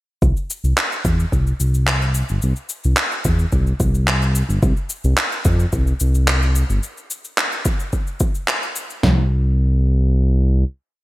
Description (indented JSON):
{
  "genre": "organic downtempo",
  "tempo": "109 BPM",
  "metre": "4/4",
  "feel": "straight",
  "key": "C major",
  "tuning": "A4 = 440 Hz",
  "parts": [
    { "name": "smooth synth bass", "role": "bass", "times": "0.2-10.6 s", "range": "G1 to F2", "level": "-16 LUFS", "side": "equal", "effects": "none" },
    { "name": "deep house drum kit", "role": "drums", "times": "0.2-9.2 s", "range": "kick drum, snare drum, toms", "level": "-19 LUFS", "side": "equal", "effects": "overdrive, gated reverb" },
    { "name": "electronic cabasa and handclaps", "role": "drums", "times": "0.2-9.0 s", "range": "none", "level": "-22 LUFS", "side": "equal", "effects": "overdrive, gated reverb" }
  ],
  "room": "little or no reverb",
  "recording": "bright 1980s-style digital production",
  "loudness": "-16 LUFS",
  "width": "side -18 dB against mid",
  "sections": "0.2-9.0 groove; 9.0-11.0 final note",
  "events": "none",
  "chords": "none",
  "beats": "| 0.23 0.78 1.33 1.88 | 2.43 2.98 3.53 4.08 | 4.63 5.18 5.73 6.28 | 6.83 7.38 7.93 8.48 | 9.03 9.58 10.13"
}